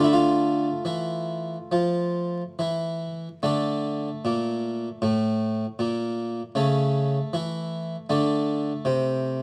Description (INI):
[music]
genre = classical, baroque-style suite movement for harpsichord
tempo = 66-79 BPM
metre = 4/4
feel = rubato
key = D minor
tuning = A4 = 440 Hz
[part]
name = harpsichord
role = solo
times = 0.0-9.4 s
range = A2 to F4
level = -25 LUFS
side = equal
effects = none
[sound]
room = light reverb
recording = dark, warm production, vinyl crackle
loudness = -26 LUFS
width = mono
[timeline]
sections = 0.0-3.4 A section; 3.4-9.4 B section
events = none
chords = 0.0 Dm; 3.4 D5; 6.6 A/C#; 8.1 D5